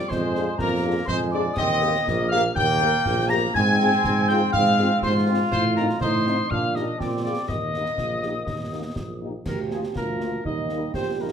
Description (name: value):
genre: military-style march for wind band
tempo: 122 BPM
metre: 2/4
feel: straight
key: Eb major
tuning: A4 = 440 Hz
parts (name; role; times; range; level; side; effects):
- dark trumpet section; melody; 0.0-11.3 s; Ab4 to Bb5; -26 LUFS; equal; none
- wooden piccolo; second line; 0.0-9.2 s; Bb5 to Bb6; -29 LUFS; left 4 dB; none
- dark trombone section; sustained chords; 0.0-11.3 s; F3 to F4; -28 LUFS; right 1 dB; none
- mellow tuba; bass; 0.1-11.3 s; Bb1 to Bb2; -25 LUFS; right 2 dB; none
- concert snare drum, concert bass drum and clash cymbals; drums; 0.1-11.3 s; none; -32 LUFS; left 1 dB; none
- dark French horn section; accompaniment; 0.3-11.3 s; G3 to Bb4; -31 LUFS; left 4 dB; none
- warm euphonium; second line; 9.5-11.3 s; Eb4 to G4; -30 LUFS; right 6 dB; none
room: moderate large studio reverb, RT60 0.8 s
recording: minimal, uncompressed stereo recording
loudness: -20 LUFS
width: side -8 dB against mid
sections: 0.0-9.5 A section; 9.5-11.3 A section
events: none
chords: 0.0 Ddim/F; 1.6 Eb; 3.5 Fm/Ab; 5.5 F7/A; 6.5 Eb/Bb; 7.0 Bb7; 7.5 Eb; 9.5 Bb/D; 10.4 Eb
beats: 0.10 | 0.59 1.08 | 1.57 2.07 | 2.56 3.05 | 3.55 4.04 | 4.53 5.03 | 5.52 6.01 | 6.50 7.00 | 7.49 7.98 | 8.48 8.97 | 9.46 9.96 | 10.45 10.94